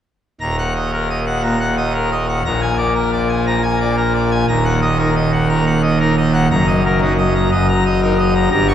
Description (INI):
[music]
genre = classical, organ toccata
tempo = 118 BPM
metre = 4/4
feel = straight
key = Eb minor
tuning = A4 = 440 Hz
[part]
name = pipe organ, full organ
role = solo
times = 0.4-8.7 s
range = Eb1 to Db6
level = -14 LUFS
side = equal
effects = none
[sound]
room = wet cathedral reverb, RT60 4.5 s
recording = heard from further back in the room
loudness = -14 LUFS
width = side -9 dB against mid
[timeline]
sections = 0.4-8.7 A section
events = none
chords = 0.4 Ebm; 2.4 Bb7; 4.5 Ebm; 6.5 Ebm/Gb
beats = | 0.40 0.92 1.43 1.94 | 2.45 2.95 3.46 3.97 | 4.48 4.99 5.50 6.00 | 6.51 7.01 7.52 8.02 | 8.52